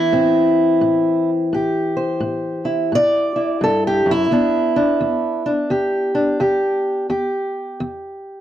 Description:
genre	acoustic country blues, solo or duo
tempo	86 BPM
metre	4/4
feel	swing 63% on 8ths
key	E minor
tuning	A4 = 440 Hz
part	fingerpicked steel-string acoustic guitar	solo	0.0-8.4 s	E2 to D5	-16 LUFS	equal	none
room	light reverb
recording	dry, close 1970s-style studio recording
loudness	-16 LUFS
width	side -12 dB against mid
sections	0.0-8.4 A section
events	steel-string acoustic guitar solo 0.0-8.4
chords	0.0 Am7; 4.3 Em7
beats	0.13 0.83 | 1.53 2.23 2.93 3.63 | 4.33 5.02 5.72 6.42 | 7.12 7.82

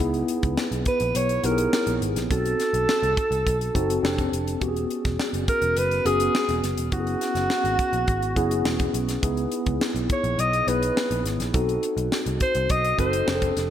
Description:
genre	polished 1980s jazz-funk pop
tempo	104 BPM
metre	4/4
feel	straight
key	unclear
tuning	A4 = 440 Hz
part	mellow tine electric piano	accompaniment	0.0-13.7 s	B3 to A4	-26 LUFS	left 1 dB	medium stereo tremolo, wide subtle chorus
part	vintage muted picked electric bass	bass	0.0-13.7 s	E1 to C#2	-28 LUFS	equal	none
part	tight funk drum kit	drums	0.0-13.7 s	hi-hat, kick drum, snare drum	-28 LUFS	equal	gated reverb
part	breathy alto saxophone	melody	0.9-13.5 s	F#4 to D#5	-25 LUFS	right 1 dB	none
room	moderate plate reverb, RT60 2.6 s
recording	bright 1980s-style digital production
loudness	-21 LUFS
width	side -10 dB against mid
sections	0.0-13.7 A section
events	none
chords	0.0 C#m9; 2.3 B7b9; 4.0 F69; 4.6 E69; 6.9 F#9sus4; 9.2 C#m9; 11.5 B7b9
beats	| 0.00 0.58 1.15 1.73 | 2.31 2.89 3.46 4.04 | 4.62 5.19 5.77 6.35 | 6.92 7.50 8.08 8.65 | 9.23 9.81 10.38 10.96 | 11.54 12.12 12.70 13.27

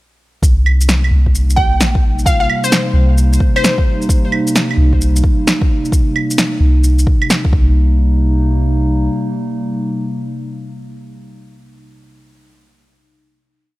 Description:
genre	future garage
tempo	131 BPM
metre	4/4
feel	swing 65% on 16ths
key	C minor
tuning	A4 = 436 Hz
part	warbly tape-like pad	sustained chords	0.8-11.9 s	C3 to Eb4	-20 LUFS	equal	chorus, built-in reverb, sidechain pumping
part	soft 808-style bass	bass	0.4-9.1 s	Bb1 to C2	-12 LUFS	equal	sidechain pumping
part	electronic kick drum	drums	0.4-7.6 s	none	-14 LUFS	equal	studio reverb
part	electronic shaker, claves and snare drum	drums	0.4-7.4 s	none	-17 LUFS	right 1 dB	studio reverb
part	glassy wavetable pluck	melody	1.6-4.2 s	C5 to G5	-19 LUFS	left 1 dB	chorus, tape echo
room	little or no reverb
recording	none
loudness	-11 LUFS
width	side -18 dB against mid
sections	0.4-7.8 groove; 7.8-11.4 final hit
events	none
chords	0.4 Cm7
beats	| 0.43 0.88 1.34 1.80 | 2.26 2.72 3.17 3.63 | 4.09 4.55 5.01 5.46 | 5.92 6.38 6.84 7.30 | 7.75 8.21 8.67 9.13 | 9.59 10.04 10.50 10.96

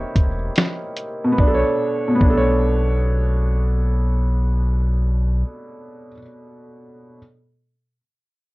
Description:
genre	lo-fi hip hop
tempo	73 BPM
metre	4/4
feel	swing 57% on 16ths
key	B minor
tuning	A4 = 438 Hz
part	felt-muted upright piano	accompaniment	0.0-7.2 s	B2 to C#5	-22 LUFS	right 1 dB	low-pass filter
part	sub bass with octave	bass	0.0-5.4 s	E1 to B1	-19 LUFS	equal	none
part	lo-fi sampler-style drum kit	drums	0.2-2.5 s	finger snaps, hi-hat, kick drum, snare drum	-17 LUFS	equal	none
room	light reverb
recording	worn, warbling old tape, cassette tape, warbly pitch drift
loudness	-17 LUFS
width	side -21 dB against mid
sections	0.0-1.4 A section; 1.4-4.7 B section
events	none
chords	0.0 D#7b9; 1.4 Bm7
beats	0.56 | 1.39 2.21 3.03 3.85

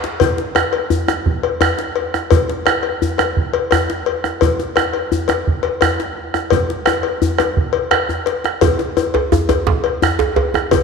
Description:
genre	west african traditional, West African drum ensemble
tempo	114 BPM (dotted quarters)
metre	12/8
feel	straight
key	none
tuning	none
part	bombo	percussion	0.0-10.8 s	none	-19 LUFS	right 5 dB	none
part	djembe	percussion	0.0-10.8 s	none	-21 LUFS	left 4 dB	none
part	cowbell	percussion	0.2-10.8 s	none	-20 LUFS	left 9 dB	none
part	djembe	percussion	8.6-10.8 s	none	-19 LUFS	right 5 dB	none
room	wet echo chamber reverb, RT60 2.3 s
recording	1960s-style stereo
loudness	-15 LUFS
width	side -5 dB against mid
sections	0.2-10.8 A section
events	drum fill 0.0, 7.9-8.6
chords	none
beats	| 0.21 0.74 1.26 1.79 | 2.31 2.84 3.37 3.89 | 4.42 4.94 5.47 5.99 | 6.52 7.04 7.57 8.10 | 8.62 9.15 9.67 10.20 | 10.72

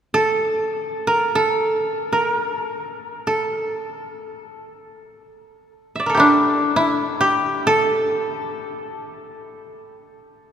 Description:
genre	japanese traditional, Japanese chamber music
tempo	free time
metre	none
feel	none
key	A in sen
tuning	A4 = 440 Hz
part	koto	solo	0.1-10.3 s	D4 to E5	-18 LUFS	equal	none
room	wet cathedral reverb, RT60 5.0 s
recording	recorded in a church or concert hall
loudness	-18 LUFS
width	side -8 dB against mid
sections	0.0-10.5 A section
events	none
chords	none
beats	free time

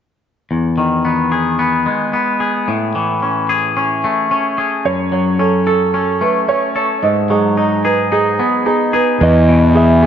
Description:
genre	rock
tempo	110 BPM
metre	4/4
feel	straight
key	E major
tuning	A4 = 439 Hz
part	twangy electric guitar	arpeggios	0.5-10.1 s	E2 to A4	-14 LUFS	left 2 dB	spring reverb, tape echo
part	felt-muted upright piano	arpeggios	4.9-10.1 s	G#4 to D#5	-17 LUFS	right 6 dB	tape echo
part	clean lap steel guitar	melody	9.2-10.1 s	D#5 to E5	-15 LUFS	right 2 dB	tape echo
part	fuzz fingered electric bass	bass	9.2-10.1 s	E2	-10 LUFS	equal	overdrive
room	light reverb, digital ambience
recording	dark, warm production, nothing above 7.6 kHz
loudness	-13 LUFS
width	side -8 dB against mid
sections	0.5-9.2 A section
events	none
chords	0.5 Emaj7; 2.7 Amaj7; 4.9 F#m; 7.0 G#m7; 9.2 Emaj7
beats	| 0.50 1.05 1.59 2.13 | 2.68 3.22 3.77 4.31 | 4.85 5.40 5.94 6.49 | 7.03 7.58 8.12 8.67 | 9.21 9.76

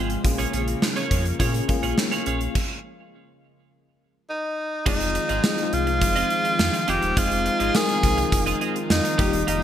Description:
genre	1980s-style pop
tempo	104 BPM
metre	4/4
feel	straight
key	F minor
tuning	A4 = 436 Hz
part	tine electric piano	accompaniment	0.0-9.6 s	G3 to Bb4	-28 LUFS	left 5 dB	ensemble chorus
part	lush unison pad	sustained chords	0.0-9.6 s	C3 to Ab4	-32 LUFS	right 1 dB	chorus
part	twelve-string electric guitar	riff	0.0-9.6 s	Bb3 to Eb5	-30 LUFS	right 6 dB	lush chorus, digital delay
part	sub bass with octave	bass	0.0-9.6 s	Eb1 to Bb2	-28 LUFS	equal	none
part	gated 80s drum kit	drums	0.1-9.6 s	crash cymbal, hi-hat, kick drum, snare drum, tambourine	-24 LUFS	right 1 dB	gated reverb
part	bright tenor saxophone	melody	4.3-9.6 s	Eb4 to Ab4	-24 LUFS	equal	digital delay
room	moderate lush hall reverb, RT60 1.7 s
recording	bright 1980s-style digital production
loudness	-20 LUFS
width	side -10 dB against mid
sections	0.0-4.9 A section; 4.9-9.6 B section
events	stop 2.6-4.9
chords	0.2 Bbm7; 2.6 N.C.; 4.9 Fm7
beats	| 0.25 0.82 1.40 1.98 | 2.55 3.13 3.71 4.29 | 4.86 5.44 6.02 6.59 | 7.17 7.75 8.32 8.90 | 9.48

